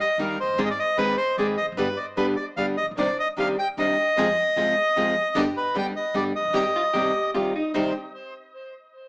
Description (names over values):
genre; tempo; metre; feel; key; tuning
tango; 151 BPM; 3/4; rubato; C harmonic minor; A4 = 440 Hz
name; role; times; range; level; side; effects
bandoneon; melody; 0.0-7.9 s; Bb4 to G5; -23 LUFS; equal; tape echo
nylon-string guitar; accompaniment; 0.2-7.9 s; C3 to Ab4; -26 LUFS; equal; none
upright bass; bass; 0.2-7.9 s; E1 to F2; -42 LUFS; equal; none
warm symphonic string section; stabs; 3.0-7.9 s; B3 to C5; -33 LUFS; equal; none
vintage hollow-body jazz guitar; second line; 6.8-7.9 s; Eb4 to G4; -27 LUFS; equal; none
room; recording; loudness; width
wet studio reverb, RT60 0.7 s; small speaker sound; -21 LUFS; side -36 dB against mid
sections
0.0-7.7 A section; 7.7-8.9 B section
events
none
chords
0.0 Eb; 0.6 Ab; 1.8 G; 3.0 Cmadd9; 4.2 Fm; 5.4 G; 6.5 Cm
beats
0.19 | 0.59 0.98 1.38 | 1.78 2.18 2.58 | 2.98 3.38 3.78 | 4.18 4.57 4.97 | 5.36 5.75 6.15 | 6.54 6.94 7.34 | 7.75